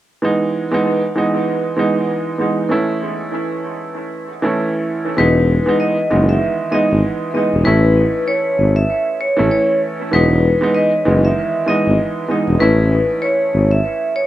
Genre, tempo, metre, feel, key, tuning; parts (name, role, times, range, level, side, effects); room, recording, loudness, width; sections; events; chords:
hip hop; 97 BPM; 4/4; swing 60% on 16ths; E major; A4 = 439 Hz
warm upright piano; accompaniment; 0.2-14.2 s; D#3 to E4; -18 LUFS; right 2 dB; cassette tape, high-pass filter, low-pass filter, dub echo
vibraphone with medium hard mallets; melody; 5.2-14.3 s; B4 to E5; -17 LUFS; left 1 dB; high-pass filter, low-pass filter, dub echo
mellow tuba; bass; 5.2-13.8 s; E1 to A1; -15 LUFS; left 1 dB
light reverb, studio ambience; echo-heavy mix; -14 LUFS; side -14 dB against mid
0.2-5.2 A section; 5.2-14.3 B section
0.2 Emaj7; 2.7 A; 5.2 Emaj7; 7.7 A; 10.1 Emaj7; 12.6 A